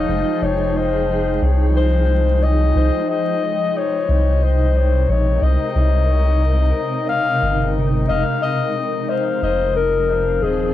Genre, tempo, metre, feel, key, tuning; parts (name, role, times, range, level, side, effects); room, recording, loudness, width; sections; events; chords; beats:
ambient dub; 90 BPM; 4/4; straight; F minor; A4 = 440 Hz
dark clarinet; melody; 0.0-10.7 s; Ab4 to F5; -20 LUFS; left 6 dB; cassette tape, dub echo
granular cloud pad; sustained chords; 0.0-10.7 s; C3 to G5; -23 LUFS; right 1 dB; built-in reverb
soft dub sub bass; bass; 0.0-10.7 s; Eb1 to C2; -17 LUFS; equal
light reverb; home recording on cassette, vinyl crackle, nothing above 10.7 kHz; -15 LUFS; side -12 dB against mid
0.0-8.1 A section; 8.1-10.7 B section
0.0 Fm9; 2.8 Cm7; 8.1 Fm7
| 0.09 0.75 1.42 2.09 | 2.75 3.42 4.09 4.75 | 5.42 6.09 6.75 7.42 | 8.09 8.75 9.42 10.09